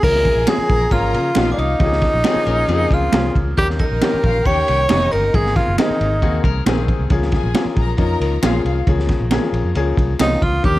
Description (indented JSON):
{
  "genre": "uptempo 1960s-style soul",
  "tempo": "136 BPM",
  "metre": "4/4",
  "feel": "straight",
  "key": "Db major",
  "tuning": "A4 = 440 Hz",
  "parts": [
    { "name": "breathy tenor saxophone", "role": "melody", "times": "0.0-6.4, 10.2-10.8 s", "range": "D4 to Db5", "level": "-18 LUFS", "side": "equal", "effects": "none" },
    { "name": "glockenspiel with brass mallets", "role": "second line", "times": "0.0-6.4, 10.2-10.8 s", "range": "D6 to Db7", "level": "-32 LUFS", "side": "right 3 dB", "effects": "none" },
    { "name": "clear grand piano", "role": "accompaniment", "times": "0.0-10.8 s", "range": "Db3 to Ab4", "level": "-24 LUFS", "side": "left 5 dB", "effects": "none" },
    { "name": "vintage muted fingered electric bass", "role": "bass", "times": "0.0-10.8 s", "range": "F1 to Db3", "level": "-21 LUFS", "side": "equal", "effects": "none" },
    { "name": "crunchy breakbeat drum kit", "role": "drums", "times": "0.0-10.8 s", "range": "crash cymbal, kick drum, ride cymbal, snare drum", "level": "-20 LUFS", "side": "equal", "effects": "vintage 12-bit sampler grit" },
    { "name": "warm symphonic string section", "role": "second line", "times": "0.3-8.7 s", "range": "Eb4 to Bb5", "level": "-27 LUFS", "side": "left 3 dB", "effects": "tape echo" },
    { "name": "mellow electric guitar", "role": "stabs", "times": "0.5-10.3 s", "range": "Bb3 to Db5", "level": "-24 LUFS", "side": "right 7 dB", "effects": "spring reverb" },
    { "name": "finger snaps", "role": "percussion", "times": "0.5-10.3 s", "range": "none", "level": "-29 LUFS", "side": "left 3 dB", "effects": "none" },
    { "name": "clean electric guitar", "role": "riff", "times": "2.3-3.3, 6.2-7.1 s", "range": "Bb3 to Bb4", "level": "-28 LUFS", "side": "left 8 dB", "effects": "none" }
  ],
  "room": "light reverb",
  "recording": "none",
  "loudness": "-14 LUFS",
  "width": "side -16 dB against mid",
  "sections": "0.0-10.8 A section",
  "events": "none",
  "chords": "0.0 Db6; 3.6 Eb7; 5.3 Abadd9; 7.1 Db6"
}